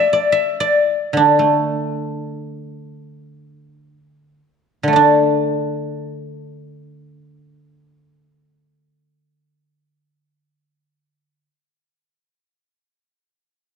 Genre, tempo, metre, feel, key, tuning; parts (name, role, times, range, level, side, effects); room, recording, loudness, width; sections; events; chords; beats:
chinese traditional, Chinese solo plucked strings; free time; A4 = 441 Hz
guzheng; solo; 0.0-11.5 s; D3 to E5; -15 LUFS; equal
moderate scoring stage reverb, RT60 1.6 s; dark, warm production; -14 LUFS; side -6 dB against mid
0.0-4.9 A section; 4.9-9.1 B section
slowing down 0.0-4.9
free time